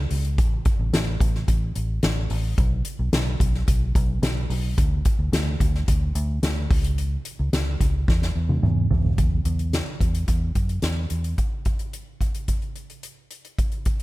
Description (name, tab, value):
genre	piano-driven pop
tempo	109 BPM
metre	4/4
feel	straight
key	A major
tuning	A4 = 440 Hz
part	vintage muted fingered electric bass	bass	0.0-11.3 s	A1 to F#2	-24 LUFS	equal	none
part	soft-mallet drum kit	drums	0.1-14.0 s	hi-hat, kick drum, snare drum, toms	-23 LUFS	equal	none
room	little or no reverb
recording	none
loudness	-21 LUFS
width	side -18 dB against mid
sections	0.0-9.2 A section; 9.2-11.4 B section; 11.4-14.0 C section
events	drum fill 8.1-9.2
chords	none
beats	| 0.38 0.93 1.48 2.03 | 2.58 3.13 3.68 4.23 | 4.78 5.33 5.88 6.43 | 6.98 7.53 8.08 8.63 | 9.18 9.73 10.28 10.83 | 11.38 11.93 12.48 13.03 | 13.58